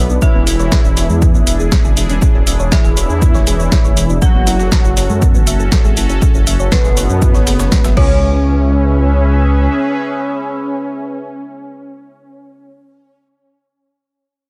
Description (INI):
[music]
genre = melodic techno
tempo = 120 BPM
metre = 4/4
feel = straight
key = C# phrygian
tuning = A4 = 440 Hz
[part]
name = soft supersaw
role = melody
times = 0.0-12.7 s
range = B2 to F#4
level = -23 LUFS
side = equal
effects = sidechain pumping, analog delay
[part]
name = dark detuned synth bell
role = second line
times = 0.0-12.7 s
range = B4 to F#5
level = -28 LUFS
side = equal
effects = chorus, tremolo, sidechain pumping, tape echo
[part]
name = sweeping resonant pad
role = sustained chords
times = 0.0-12.7 s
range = B3 to E5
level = -27 LUFS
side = equal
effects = chorus, sidechain pumping
[part]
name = dark detuned saw bass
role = bass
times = 0.0-9.7 s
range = E1 to F#2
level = -17 LUFS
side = equal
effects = tube saturation, sidechain pumping
[part]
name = soft round pluck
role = arpeggios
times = 0.1-8.4 s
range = G#3 to E5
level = -26 LUFS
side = equal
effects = chorus, sidechain pumping, analog delay
[part]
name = punchy analog drum machine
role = drums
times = 0.1-8.1 s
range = crash cymbal, hi-hat, shaker, snare drum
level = -23 LUFS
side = equal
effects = none
[part]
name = breakbeat sampler-style drum kit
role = drums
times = 0.2-8.0 s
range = hi-hat, shaker, snare drum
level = -32 LUFS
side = equal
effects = none
[part]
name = electronic kick drum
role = drums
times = 0.2-8.1 s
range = none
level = -15 LUFS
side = equal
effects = none
[sound]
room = digital ambience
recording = echo-heavy mix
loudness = -13 LUFS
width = mono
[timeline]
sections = 0.0-8.2 A section; 8.2-12.2 B section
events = drop 0.0-8.2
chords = 0.2 E7; 4.2 F#m; 8.0 C#m7